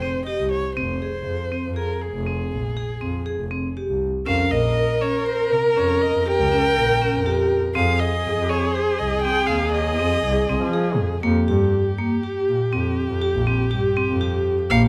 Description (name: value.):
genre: contemporary instrumental, chamber music in an uneven meter.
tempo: 121 BPM.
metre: 7/4.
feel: straight.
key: F minor.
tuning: A4 = 440 Hz.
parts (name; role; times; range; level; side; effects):
rich violin; melody; 0.0-14.8 s; Ab4 to G5; -28 LUFS; equal; none.
vibraphone with hard mallets; arpeggios; 0.0-14.9 s; Bb3 to Bb4; -27 LUFS; equal; none.
rich double bass; bass; 0.0-14.9 s; F1 to F3; -26 LUFS; equal; none.
warm viola; second line; 4.3-14.9 s; G4 to Bb4; -26 LUFS; equal; none.
room: moderate recital hall reverb, RT60 1.7 s.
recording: close, detailed microphones.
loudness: -22 LUFS.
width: mono.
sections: 0.0-4.3 A section; 4.3-14.9 B section.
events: none.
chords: 0.0 Fmadd9; 4.3 Eb7; 7.8 Fm7; 11.2 C7(no3).